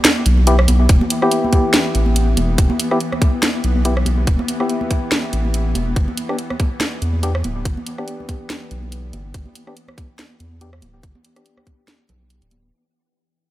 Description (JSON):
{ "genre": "deep dubstep", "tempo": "142 BPM", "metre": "4/4", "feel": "swing 56% on 16ths, half-time", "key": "unclear", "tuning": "A4 = 440 Hz", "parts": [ { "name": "bowed-like drone", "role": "sustained chords", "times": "0.2-12.8 s", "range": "E3 to B3", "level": "-28 LUFS", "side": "left 3 dB", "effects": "built-in reverb" }, { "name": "garage drum kit", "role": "drums", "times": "0.0-12.6 s", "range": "hi-hat, rim click, snare drum", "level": "-19 LUFS", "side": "right 1 dB", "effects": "overdrive, studio reverb" }, { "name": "congas", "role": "percussion", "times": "0.0-12.6 s", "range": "none", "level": "-26 LUFS", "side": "right 2 dB", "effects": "dub echo" }, { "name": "saturated sub bass", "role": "bass", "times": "0.3-12.7 s", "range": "D1 to E2", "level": "-17 LUFS", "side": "equal", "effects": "tube saturation" }, { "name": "percussive organ stab", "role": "stabs", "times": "0.5-12.7 s", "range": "B3 to G4", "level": "-23 LUFS", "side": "left 2 dB", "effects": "chorus, dub echo" }, { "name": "electronic kick drum", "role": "drums", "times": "0.9-11.8 s", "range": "none", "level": "-16 LUFS", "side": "equal", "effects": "overdrive, studio reverb" } ], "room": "digital ambience", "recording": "none", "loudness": "-15 LUFS", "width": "side -15 dB against mid", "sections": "0.0-12.7 A section", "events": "fade-out 0.0-12.7; filter sweep on synth stab 0.0-12.7", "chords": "0.0 Em; 6.0 G" }